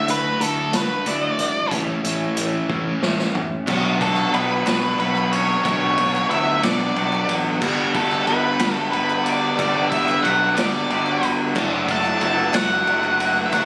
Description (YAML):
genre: indie rock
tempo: 61 BPM (dotted quarters)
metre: 6/8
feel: straight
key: unclear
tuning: A4 = 440 Hz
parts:
  - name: octave-fuzz lead guitar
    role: melody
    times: 0.0-13.7 s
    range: A4 to A5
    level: -24 LUFS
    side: equal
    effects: distortion, slapback echo
  - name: electric guitar through a small old amp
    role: riff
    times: 0.0-13.7 s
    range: A2 to D5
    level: -30 LUFS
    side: equal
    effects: lush chorus, slapback echo
  - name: overdriven electric guitar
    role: riff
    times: 0.0-13.7 s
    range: E3 to F#4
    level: -29 LUFS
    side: equal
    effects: none
  - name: modern bright fingered electric bass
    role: bass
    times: 0.1-13.7 s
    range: F#1 to D2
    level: -31 LUFS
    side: equal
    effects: none
  - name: vintage drum kit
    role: drums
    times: 0.1-13.7 s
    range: crash cymbal, hi-hat, kick drum, ride cymbal, snare drum, toms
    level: -25 LUFS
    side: equal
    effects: none
  - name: combo organ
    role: sustained chords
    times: 3.7-13.7 s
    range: G3 to D6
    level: -34 LUFS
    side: equal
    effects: none
  - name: group handclap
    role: percussion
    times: 3.7-13.7 s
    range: none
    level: -39 LUFS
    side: equal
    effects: none
  - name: growling trumpet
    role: second line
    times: 4.0-13.7 s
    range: A3 to A4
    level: -35 LUFS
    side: equal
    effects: none
room: light reverb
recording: recorded on a phone in the room, studio reverb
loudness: -20 LUFS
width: mono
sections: 0.0-3.7 A section; 3.7-13.7 B section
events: lead electric guitar solo 0.0-3.7; drum fill 2.7-3.7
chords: 0.0 Dadd9; 1.7 A; 3.7 Bmadd9; 7.6 Gmaj7; 11.6 Dadd9/F#